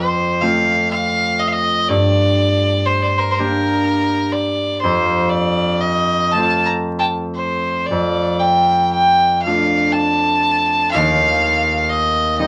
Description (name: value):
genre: celtic folk, Celtic slow air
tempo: 40 BPM (dotted quarters)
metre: 6/8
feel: uneven beats, rubato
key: unclear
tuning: A4 = 441 Hz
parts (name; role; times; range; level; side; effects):
- clear fiddle; melody; 0.0-12.5 s; Bb4 to Bb5; -18 LUFS; equal; none
- concert harp; accompaniment; 0.0-12.5 s; Eb2 to G4; -21 LUFS; equal; none
room: wet club ambience, RT60 0.5 s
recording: vinyl crackle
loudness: -17 LUFS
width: mono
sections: 0.0-12.5 A section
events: none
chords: 0.0 F; 1.9 Gm; 4.8 F; 7.9 F6; 10.9 N.C.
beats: 0.43 | 1.90 3.38 | 4.84 6.34 | 7.91 9.45 | 10.94 12.39